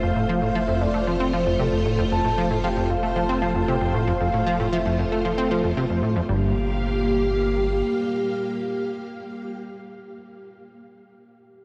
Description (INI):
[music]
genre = ambient, sequencer-driven space music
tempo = 115 BPM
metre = 4/4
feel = straight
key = G minor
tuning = A4 = 440 Hz
[part]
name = soft octave-layered synth lead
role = melody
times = 0.0-9.6 s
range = G4 to A5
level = -29 LUFS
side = equal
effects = chorus, phaser, tape echo
[part]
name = string machine, full ensemble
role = sustained chords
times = 0.0-9.6 s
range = A3 to F5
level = -29 LUFS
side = equal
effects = ensemble chorus
[part]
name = plucky analog bass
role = riff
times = 0.0-6.5 s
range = F2 to C4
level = -27 LUFS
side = equal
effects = analog chorus, cassette tape, tape echo
[part]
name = warm sub bass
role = bass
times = 0.0-7.8 s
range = F1 to G1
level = -32 LUFS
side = equal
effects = transformer saturation
[sound]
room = wet huge ambient reverb, RT60 7.2 s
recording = worn, warbling old tape, cassette tape, warbly pitch drift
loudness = -23 LUFS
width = mono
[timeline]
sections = 0.0-6.3 A section; 6.3-10.5 B section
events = none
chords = 0.0 Fmaj7; 6.3 Gm7